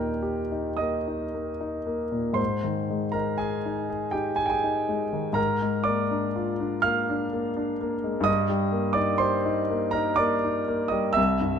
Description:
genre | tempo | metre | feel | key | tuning
classical, romantic nocturne for solo piano | 61 BPM | 3/4 | uneven beats, rubato | Eb major | A4 = 441 Hz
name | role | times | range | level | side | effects
warm concert grand piano | solo | 0.0-11.6 s | C2 to F6 | -24 LUFS | equal | none
room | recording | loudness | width
moderate scoring stage reverb, RT60 1.8 s | close, detailed microphones | -24 LUFS | side -7 dB against mid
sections
0.0-11.6 A section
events
none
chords
0.0 Eb; 2.4 Ab; 5.4 Bb7/Ab; 8.3 Eb/G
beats
0.22 1.35 | 2.39 3.41 4.40 | 5.38 6.36 7.34 | 8.27 9.22 10.20 | 11.17

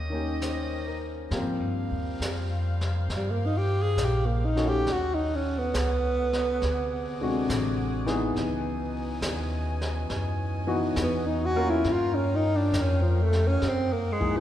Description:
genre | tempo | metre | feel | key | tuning
jazz ballad | 68 BPM | 4/4 | swing 67% on 8ths | unclear | A4 = 440 Hz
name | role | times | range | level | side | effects
mellow tenor saxophone | melody | 0.0-14.4 s | F3 to Ab4 | -27 LUFS | right 1 dB | none
clear saxophone section | sustained chords | 0.0-14.4 s | Cb3 to Ab5 | -38 LUFS | equal | none
upright bass | bass | 0.0-14.4 s | A1 to Ab2 | -28 LUFS | equal | none
warm concert grand piano | accompaniment | 0.1-14.4 s | C3 to C5 | -31 LUFS | left 2 dB | none
jazz brush drum kit | drums | 0.4-14.4 s | brushed snare drum, hi-hat, kick drum, snare drum | -37 LUFS | equal | none
room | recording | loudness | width
moderate concert hall reverb, RT60 2.3 s | recorded in a church or concert hall | -24 LUFS | side -11 dB against mid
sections
0.0-1.3 A section; 1.3-14.4 B section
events
tenor saxophone solo 1.3-14.4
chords
0.0 Eb7; 1.3 Abmaj13 (rootless); 4.9 Ebm7b5; 6.6 D7#11; 8.4 Dbm11; 11.9 Gm7b5; 13.6 Gb13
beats
0.42 | 1.32 2.21 3.10 3.98 | 4.86 5.74 6.61 7.48 | 8.35 9.22 10.10 10.97 | 11.85 12.73 13.62

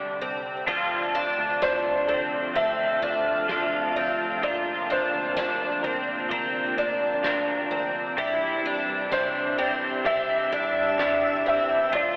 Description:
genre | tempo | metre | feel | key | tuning
dream pop | 64 BPM | 4/4 | straight | D minor | A4 = 438 Hz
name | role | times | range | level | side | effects
string machine, cellos | sustained chords | 0.0-12.2 s | C3 to G4 | -37 LUFS | equal | phaser, ensemble chorus
picked twelve-string acoustic guitar | arpeggios | 0.0-12.2 s | C4 to F4 | -29 LUFS | equal | analog chorus, tape echo
vintage muted picked electric bass | bass | 0.0-12.2 s | C2 to D2 | -49 LUFS | equal | none
twelve-string electric guitar | accompaniment | 0.7-12.2 s | C3 to Bb4 | -33 LUFS | equal | tremolo, analog chorus
soft-mallet drum kit | drums | 0.7-12.1 s | crash cymbal, kick drum, ride cymbal, snare drum, tambourine | -40 LUFS | equal | none
felt-muted upright piano | melody | 1.6-12.2 s | C5 to E5 | -30 LUFS | equal | tape echo
backwards swelling texture | texture | 3.0-12.2 s | F4 to Bb5 | -37 LUFS | equal | none
room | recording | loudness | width
wet cathedral reverb, RT60 5.4 s | dreamy mix soaked in reverb, telephone sound | -25 LUFS | mono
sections
0.7-12.2 A section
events
none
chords
0.0 Csus2; 0.7 Dm7; 4.4 Bbadd9; 8.2 Cadd9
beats
| 0.68 1.62 2.56 3.49 | 4.43 5.37 6.31 7.24 | 8.18 9.12 10.06 10.99 | 11.93

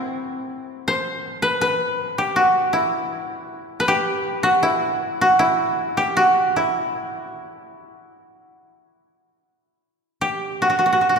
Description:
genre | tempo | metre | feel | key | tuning
japanese traditional, Japanese chamber music | 70-81 BPM | 4/4 | rubato | E hirajoshi | A4 = 440 Hz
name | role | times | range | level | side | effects
koto | solo | 0.0-11.2 s | C4 to C5 | -18 LUFS | equal | none
room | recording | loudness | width
wet church reverb, RT60 3.2 s | recorded in a church or concert hall | -18 LUFS | side -6 dB against mid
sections
0.0-10.2 A section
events
none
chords
none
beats
0.08 | 0.83 1.58 2.35 3.10 | 3.85 4.61 5.38 6.17 | 6.95 7.74 8.54 9.37 | 10.21 11.02

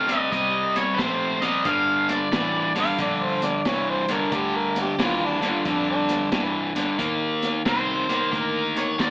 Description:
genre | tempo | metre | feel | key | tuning
electric blues shuffle | 90 BPM | 4/4 | swing 65% on 8ths | G minor | A4 = 440 Hz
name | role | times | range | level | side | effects
raw garage guitar | melody | 0.0-2.7, 7.7-9.1 s | Bb4 to F5 | -23 LUFS | equal | overdrive
cranked stack guitar | riff | 0.0-9.1 s | G2 to C4 | -23 LUFS | left 1 dB | overdrive
vintage muted fingered electric bass | bass | 0.0-9.1 s | G1 to G2 | -35 LUFS | equal | none
crunchy breakbeat drum kit | drums | 0.1-9.1 s | hi-hat, kick drum, snare drum | -29 LUFS | equal | none
warm harmonica | second line | 2.8-6.5 s | D4 to F5 | -26 LUFS | right 1 dB | digital delay
room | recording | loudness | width
light reverb | AM radio sound | -20 LUFS | side -23 dB against mid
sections
0.0-9.1 A section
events
none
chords
0.0 Cm7; 1.7 Gm7; 7.0 Eb5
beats
0.32 0.99 | 1.66 2.33 2.99 3.66 | 4.33 4.99 5.66 6.33 | 7.00 7.66 8.33 9.00

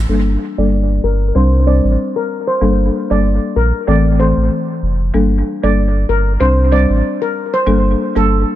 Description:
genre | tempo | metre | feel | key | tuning
dancehall | 95 BPM | 4/4 | swing 56% on 16ths | G dorian | A4 = 440 Hz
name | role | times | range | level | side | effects
warm sub bass | bass | 0.0-8.4 s | F1 to C2 | -14 LUFS | equal | none
folk marimba with soft mallets | accompaniment | 0.1-8.3 s | E3 to C5 | -17 LUFS | left 3 dB | low-pass filter, dub echo
steel pan | melody | 0.6-8.3 s | A4 to D5 | -19 LUFS | right 1 dB | low-pass filter, dub echo
room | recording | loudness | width
small room ambience | echo-heavy mix | -12 LUFS | side -13 dB against mid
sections
0.1-8.6 A section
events
filter sweep 0.1-8.6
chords
0.1 Gmadd9; 1.4 Csus2; 2.6 Gmadd9; 3.9 Am; 5.1 Gmadd9; 6.4 Csus2; 7.7 Gmadd9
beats
| 0.09 0.72 1.35 1.98 | 2.62 3.25 3.88 4.51 | 5.14 5.77 6.41 7.04 | 7.67 8.30

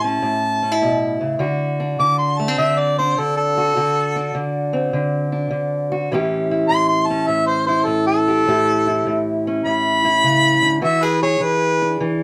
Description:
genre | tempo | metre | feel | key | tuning
acoustic country blues, solo or duo | 102 BPM | 4/4 | swing 67% on 8ths | A mixolydian | A4 = 435 Hz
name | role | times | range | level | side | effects
mellow harmonica | melody | 0.0-12.0 s | A4 to D6 | -20 LUFS | equal | none
fingerpicked steel-string acoustic guitar | accompaniment | 0.0-12.2 s | A2 to G#4 | -22 LUFS | equal | none
room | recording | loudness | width
moderate studio reverb, RT60 0.6 s | none | -19 LUFS | mono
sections
0.0-12.2 A section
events
harmonica solo 0.0-12.2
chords
0.0 A7; 1.4 D7; 6.1 A7; 10.8 E7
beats
0.23 0.82 | 1.41 2.00 2.59 3.17 | 3.76 4.35 4.94 5.53 | 6.11 6.70 7.29 7.88 | 8.46 9.05 9.64 10.23 | 10.82 11.41 11.99

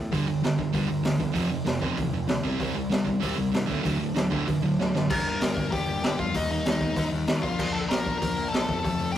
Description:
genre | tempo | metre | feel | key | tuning
punk rock | 193 BPM | 4/4 | straight | G minor | A4 = 442 Hz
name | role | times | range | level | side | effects
growling picked electric bass | bass | 0.0-9.2 s | F1 to Eb3 | -34 LUFS | equal | overdrive
sludgy distorted guitar | riff | 0.1-9.2 s | F2 to Eb4 | -30 LUFS | left 5 dB | overdrive
sludgy distorted guitar | riff | 0.1-5.1 s | F2 to C4 | -27 LUFS | right 4 dB | overdrive
raw garage drum kit | drums | 0.1-9.2 s | crash cymbal, hi-hat, kick drum, snare drum | -29 LUFS | equal | none
high-gain lead guitar | melody | 5.1-9.2 s | Eb4 to Bb5 | -30 LUFS | left 1 dB | distortion
room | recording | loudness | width
light reverb | rough rehearsal-room recording, warm saturation | -24 LUFS | side -11 dB against mid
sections
0.0-5.1 A section; 5.1-9.2 B section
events
drum fill 4.8-5.1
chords
0.1 G5; 1.4 F5; 2.4 C5; 3.7 D; 5.1 Gm; 6.3 Eb; 7.4 Bb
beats
| 0.11 0.42 0.74 1.05 | 1.36 1.67 1.98 2.29 | 2.60 2.92 3.23 3.54 | 3.85 4.16 4.47 4.79 | 5.10 5.41 5.72 6.03 | 6.34 6.66 6.97 7.28 | 7.59 7.90 8.21 8.52 | 8.84 9.15

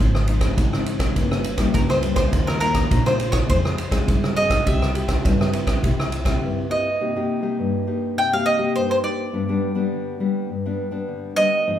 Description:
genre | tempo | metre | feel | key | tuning
samba and choro | 103 BPM | 4/4 | straight | C minor from 7.0 s | A4 = 439 Hz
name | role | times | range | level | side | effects
bowl-back mandolin | melody | 0.0-11.8 s | Bb4 to G5 | -22 LUFS | right 1 dB | none
nylon-string guitar | accompaniment | 0.0-11.8 s | G2 to Ab4 | -24 LUFS | left 3 dB | none
upright bass | bass | 0.0-6.3 s | G1 to G2 | -24 LUFS | right 1 dB | none
swinging big-band drum kit | drums | 0.1-6.4 s | kick drum, ride cymbal, rim click | -21 LUFS | equal | none
room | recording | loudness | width
wet large studio reverb, RT60 1.1 s | band playing live in one room | -19 LUFS | side -10 dB against mid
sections
0.0-7.0 A section; 7.0-11.8 B section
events
none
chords
0.0 Ab6; 1.2 Gdim; 2.3 Ebsus2; 3.5 Fm; 4.7 C; 7.0 Cm7; 9.3 G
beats
0.57 1.16 1.74 | 2.33 2.91 3.50 4.08 | 4.67 5.25 5.83 6.42 | 7.00 7.58 8.17 8.75 | 9.34 9.92 10.50 11.09 | 11.67

